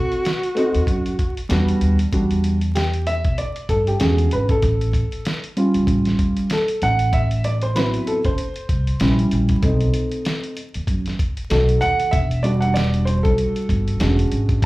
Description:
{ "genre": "hip hop, jazz-hop", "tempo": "96 BPM", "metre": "4/4", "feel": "swing 58% on 16ths", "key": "E minor", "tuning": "A4 = 440 Hz", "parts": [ { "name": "mellow alto saxophone", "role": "melody", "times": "0.0-1.5 s", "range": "F#4", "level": "-24 LUFS", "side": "equal", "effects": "slapback echo" }, { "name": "dark upright piano", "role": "accompaniment", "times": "0.0-14.6 s", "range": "F#3 to F#5", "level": "-21 LUFS", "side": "right 1 dB", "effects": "plate reverb" }, { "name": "lo-fi sampler-style drum kit", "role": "drums", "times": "0.1-14.7 s", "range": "hi-hat, kick drum, snare drum", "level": "-24 LUFS", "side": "equal", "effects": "none" }, { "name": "upright bass", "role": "bass", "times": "0.7-14.7 s", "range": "E1 to B2", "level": "-20 LUFS", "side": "equal", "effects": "none" } ], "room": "light reverb", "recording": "live gig heard through the venue's PA, club reverb, vinyl crackle", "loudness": "-17 LUFS", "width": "side -19 dB against mid", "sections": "0.0-2.1 A section; 2.1-14.7 B section", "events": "upright piano solo 2.1-14.7", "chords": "0.0 B7b9 (rootless); 1.5 Em9; 4.0 E13; 4.6 Aaug7; 6.8 F#m7b5; 9.0 A#dim7; 9.6 B7b9; 11.5 B7; 12.1 Em9; 14.0 E13" }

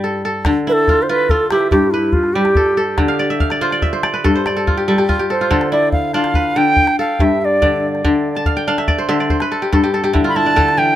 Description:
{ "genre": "west african traditional, West African string and xylophone music", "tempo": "95 BPM (dotted quarters)", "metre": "12/8", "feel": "straight", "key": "D dorian", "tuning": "A4 = 441 Hz", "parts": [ { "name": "kora", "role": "arpeggios", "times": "0.0-11.0 s", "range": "G2 to A5", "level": "-16 LUFS", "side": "left 1 dB", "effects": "none" }, { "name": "calabash", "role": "percussion", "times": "0.4-10.8 s", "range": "none", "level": "-18 LUFS", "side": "left 1 dB", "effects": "none" }, { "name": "bright reedy bansuri", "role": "melody", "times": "0.7-11.0 s", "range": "E4 to B5", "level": "-16 LUFS", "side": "right 1 dB", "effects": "tape echo" } ], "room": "light reverb", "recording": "none", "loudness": "-13 LUFS", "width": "side -12 dB against mid", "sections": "0.0-5.5 A section; 5.5-11.0 B section", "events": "kora fill 3.1-5.5, 8.4-10.6", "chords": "0.5 Dm; 1.7 G; 3.0 Dm; 4.2 N.C.; 5.5 Dm; 6.8 G; 8.0 N.C.; 9.3 G5" }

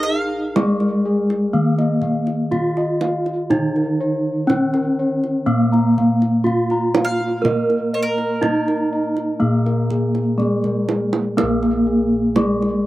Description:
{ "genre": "Javanese gamelan", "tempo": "61 BPM", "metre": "4/4", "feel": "straight", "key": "Bb slendro", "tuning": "A4 = 439 Hz", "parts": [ { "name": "gamelan-type bronze metallophone", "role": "melody", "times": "0.0-12.9 s", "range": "Ab3-25c to Bb4", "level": "-19 LUFS", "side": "equal", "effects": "none" }, { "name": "bowl-back mandolin", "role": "second line", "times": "0.0-11.0 s", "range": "Bb4 to F5", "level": "-28 LUFS", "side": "right 2 dB", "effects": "slapback echo" }, { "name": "gamelan-type bossed gongs", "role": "arpeggios", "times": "0.0-12.9 s", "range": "Ab4-25c to Bb5", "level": "-25 LUFS", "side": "left 2 dB", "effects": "none" }, { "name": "gamelan-type bossed gongs", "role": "bass", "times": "0.0-12.9 s", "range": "Bb1 to Bb4", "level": "-24 LUFS", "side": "equal", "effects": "none" }, { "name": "kendang", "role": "percussion", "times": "0.6-12.7 s", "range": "none", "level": "-25 LUFS", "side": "right 4 dB", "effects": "none" }, { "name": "gamelan-type bronze metallophone", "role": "accompaniment", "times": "3.5-12.9 s", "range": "Eb3 to Bb3", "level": "-25 LUFS", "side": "right 3 dB", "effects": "none" } ], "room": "little or no reverb", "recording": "recorded outdoors, with no room sound", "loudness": "-16 LUFS", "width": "side -16 dB against mid", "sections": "0.0-11.4 A section; 11.4-12.9 A section", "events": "drum fill 10.4-11.4", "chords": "none" }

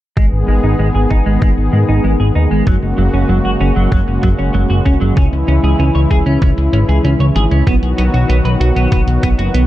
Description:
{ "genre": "synthwave", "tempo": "96 BPM", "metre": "4/4", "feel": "straight", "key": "G# minor", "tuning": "A4 = 440 Hz", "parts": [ { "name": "brassy analog pad", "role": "sustained chords", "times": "0.2-9.7 s", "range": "C#3 to G#4", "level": "-18 LUFS", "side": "left 1 dB", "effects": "chorus, sidechain pumping" }, { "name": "clean electric guitar", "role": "riff", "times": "0.2-9.6 s", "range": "F#3 to C#5", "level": "-20 LUFS", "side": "right 2 dB", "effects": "analog chorus, low-pass filter, ping-pong delay" }, { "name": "fat analog bass", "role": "bass", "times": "0.2-9.7 s", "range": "F#1 to G#2", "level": "-13 LUFS", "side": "equal", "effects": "none" }, { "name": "electronic hi-hat", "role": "drums", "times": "0.2-9.7 s", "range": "none", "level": "-34 LUFS", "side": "right 1 dB", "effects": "low-pass filter on hats, low-pass filter on room" }, { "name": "electronic kick drum", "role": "drums", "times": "0.2-9.4 s", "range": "none", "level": "-14 LUFS", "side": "equal", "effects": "none" } ], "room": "light reverb", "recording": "dark, warm production", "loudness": "-11 LUFS", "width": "side -14 dB against mid", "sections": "0.2-9.7 A section", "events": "filter sweep on drum 0.2-9.7; filter sweep on analog synth bass 0.2-9.7; filter sweep on clean electric guitar 0.2-9.7", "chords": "0.2 G#m; 2.7 F#add9; 5.2 C#m; 7.7 B" }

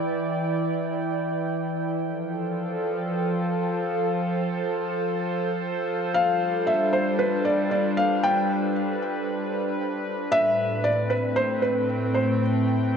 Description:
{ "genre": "IDM", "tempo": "115 BPM", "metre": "4/4", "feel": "straight", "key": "unclear", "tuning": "A4 = 441 Hz", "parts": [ { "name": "warbly tape-like pad", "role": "sustained chords", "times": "0.0-13.0 s", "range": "A2 to G5", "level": "-24 LUFS", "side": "equal", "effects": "chorus, built-in reverb, vintage 12-bit sampler grit" }, { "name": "felt-muted upright piano", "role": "melody", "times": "6.1-12.4 s", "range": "B4 to G5", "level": "-24 LUFS", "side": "left 1 dB", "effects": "vintage 12-bit sampler grit, ping-pong delay" } ], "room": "wet plate reverb, RT60 2.7 s", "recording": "dark, warm production", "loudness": "-22 LUFS", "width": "side -7 dB against mid", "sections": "0.0-13.0 A section", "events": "none", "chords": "0.0 Em7; 2.0 Fadd9; 6.2 G9; 10.3 Am9" }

